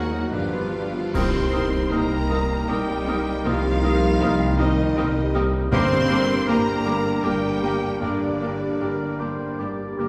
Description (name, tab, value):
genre	cinematic, emotional film score for orchestra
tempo	78 BPM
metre	3/4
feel	rubato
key	C minor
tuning	A4 = 440 Hz
part	rich studio violin section	melody	0.0-9.6 s	D5 to C6	-34 LUFS	equal	none
part	mellow hollow silver concert flute	second line	0.0-10.1 s	Bb4 to Eb6	-37 LUFS	equal	none
part	rich studio violin section	second line	0.0-10.1 s	D4 to G4	-42 LUFS	equal	none
part	warm clarinet	second line	0.0-9.6 s	D4 to C5	-33 LUFS	equal	none
part	warm oboe	second line	0.0-10.1 s	Bb4 to D5	-38 LUFS	equal	none
part	bright grand piano	accompaniment	0.0-10.1 s	C2 to B4	-30 LUFS	equal	none
part	clear studio viola section	accompaniment	0.0-10.1 s	Gb3 to G4	-34 LUFS	equal	none
part	mellow French horn section	sustained chords	0.0-10.0 s	F3 to Eb4	-31 LUFS	equal	none
part	concert harp	arpeggios	0.0-10.1 s	G2 to Bb5	-32 LUFS	equal	none
part	clear studio cello section	bass	0.0-9.6 s	Eb2 to C4	-32 LUFS	equal	none
part	rich studio double bass section	bass	0.0-10.1 s	G1 to Eb2	-30 LUFS	equal	none
part	clash cymbals and concert bass drum	percussion	1.1-2.6 s	none	-34 LUFS	equal	none
part	timpani	percussion	1.1-6.8 s	G2 to C3	-35 LUFS	equal	none
room	wet scoring stage reverb, RT60 2.1 s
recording	heard from further back in the room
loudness	-22 LUFS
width	mono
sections	0.0-1.1 A section; 1.1-10.1 B section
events	band accent 1.1-1.9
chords	0.3 G7; 1.1 Cm7; 5.7 Gm